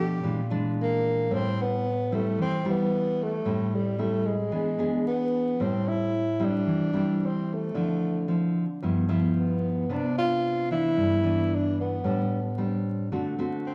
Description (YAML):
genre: bossa nova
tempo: 112 BPM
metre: 4/4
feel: straight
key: A minor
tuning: A4 = 438 Hz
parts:
  - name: breathy tenor saxophone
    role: melody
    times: 0.0-13.7 s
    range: G3 to G4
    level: -30 LUFS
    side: equal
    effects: none
  - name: nylon-string guitar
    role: accompaniment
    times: 0.0-13.7 s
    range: G2 to G#4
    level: -28 LUFS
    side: equal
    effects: none
room: wet large studio reverb, RT60 0.9 s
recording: vinyl crackle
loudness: -27 LUFS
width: mono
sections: 0.0-5.6 A section; 5.6-13.7 A section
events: none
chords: 0.2 Bb7#11; 1.3 Am7; 4.5 E7; 5.6 Am7; 7.7 Dm9; 8.8 G6; 9.9 Cmaj9; 12.0 Am11; 13.1 D7